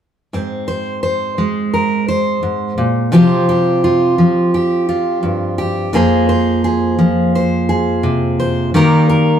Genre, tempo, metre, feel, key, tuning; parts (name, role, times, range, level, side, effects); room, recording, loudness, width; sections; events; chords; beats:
folk; 86 BPM; 4/4; straight; A4 = 440 Hz
fingerpicked steel-string acoustic guitar; accompaniment; 0.3-9.4 s; F2 to C5; -12 LUFS; equal
moderate stone room reverb, RT60 1.2 s; band playing live in one room; -13 LUFS; side -9 dB against mid
0.3-9.4 A section
0.3 Ab; 3.1 Csus4; 5.9 Fm; 8.7 Eb
| 0.33 1.03 1.73 2.43 | 3.13 3.83 4.53 5.23 | 5.93 6.63 7.33 8.03 | 8.73